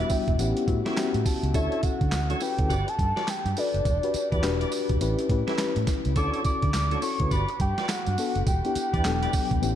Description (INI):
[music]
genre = R&B, new jack swing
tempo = 104 BPM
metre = 4/4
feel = swing 62% on 16ths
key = E dorian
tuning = A4 = 436 Hz
[part]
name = soft octave-layered synth lead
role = melody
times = 0.0-9.8 s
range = D5 to D6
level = -30 LUFS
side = equal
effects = chorus, tremolo, shimmer reverb
[part]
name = FM electric piano with tremolo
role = accompaniment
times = 0.0-9.8 s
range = F#3 to A5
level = -29 LUFS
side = left 5 dB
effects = shimmer reverb
[part]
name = percussive tonewheel organ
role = stabs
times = 0.0-9.3 s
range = D4 to D5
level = -36 LUFS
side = right 2 dB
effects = overdrive, chorus vibrato, slow rotary speaker, shimmer reverb
[part]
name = boom bap sampler-style drum kit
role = drums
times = 0.1-9.8 s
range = handclaps, hi-hat, kick drum, snare drum, tambourine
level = -28 LUFS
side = right 1 dB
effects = none
[part]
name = vintage muted fingered electric bass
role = bass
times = 0.3-9.7 s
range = E1 to D3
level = -27 LUFS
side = right 1 dB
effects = none
[sound]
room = light reverb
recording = dark, warm production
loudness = -23 LUFS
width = side -10 dB against mid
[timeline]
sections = 0.0-9.8 A section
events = FM electric piano fill 0.0-1.5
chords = 0.4 A7; 1.5 Dmaj7; 2.7 Gmaj7; 3.9 Em7; 5.0 A7; 6.2 Dmaj7; 7.3 Gmaj7; 8.5 Em7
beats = 0.39 0.97 | 1.54 2.12 2.70 3.27 | 3.85 4.43 5.00 5.58 | 6.16 6.74 7.31 7.89 | 8.47 9.04 9.62